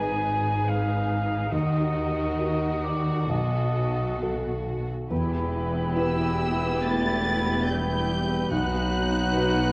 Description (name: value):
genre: cinematic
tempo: 65-72 BPM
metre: 4/4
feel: rubato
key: E harmonic minor from 5.1 s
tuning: A4 = 440 Hz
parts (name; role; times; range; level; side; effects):
- warm studio violin section; melody; 0.0-9.7 s; A4 to A6; -36 LUFS; equal; none
- mellow cor anglais; second line; 0.0-9.7 s; B4 to Ab5; -34 LUFS; equal; none
- rich studio violin section; second line; 0.0-9.7 s; Gb4 to B4; -39 LUFS; equal; none
- dark studio viola section; accompaniment; 0.0-9.7 s; B3 to F#4; -35 LUFS; equal; none
- felt-muted upright piano; accompaniment; 0.0-9.7 s; B1 to Cb5; -33 LUFS; equal; none
- rich studio cello section; bass; 0.0-9.7 s; E2 to Eb3; -34 LUFS; equal; none
- warm studio double bass section; bass; 0.0-9.7 s; E1 to Eb2; -34 LUFS; equal; none
- bright clarinet; second line; 5.1-9.7 s; D#4 to E4; -37 LUFS; equal; none
- mellow hollow concert flute; second line; 5.1-9.7 s; F#5 to G5; -37 LUFS; equal; none
- dark French horn section; sustained chords; 5.9-9.7 s; E3 to A3; -33 LUFS; equal; none
room: moderate scoring stage reverb, RT60 1.6 s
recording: worn, warbling old tape, cassette tape, warbly pitch drift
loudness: -26 LUFS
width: mono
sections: 0.0-5.1 A section; 5.1-9.7 A section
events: none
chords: 0.0 Abm; 1.5 Ebm; 3.3 B7; 5.1 Em; 8.5 B